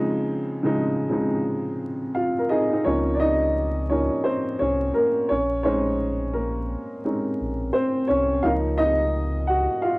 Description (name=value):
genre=lo-fi hip hop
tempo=86 BPM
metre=4/4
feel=swing 64% on 16ths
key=Db major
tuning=A4 = 440 Hz
part: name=dark upright piano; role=accompaniment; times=0.0-10.0 s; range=Db3 to Gb5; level=-21 LUFS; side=equal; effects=cassette tape, low-pass filter
part: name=sub bass with octave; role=bass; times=2.9-9.7 s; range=Bb1 to Db2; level=-27 LUFS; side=equal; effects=tube saturation
room=moderate spring reverb, RT60 1.7 s, small room ambience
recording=home recording on cassette, vinyl crackle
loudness=-21 LUFS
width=side -25 dB against mid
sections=0.0-2.9 A section; 2.9-10.0 B section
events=upright piano solo 2.9-10.0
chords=0.0 Dbmaj13; 2.9 Db69; 5.3 Bbm11; 8.4 Db69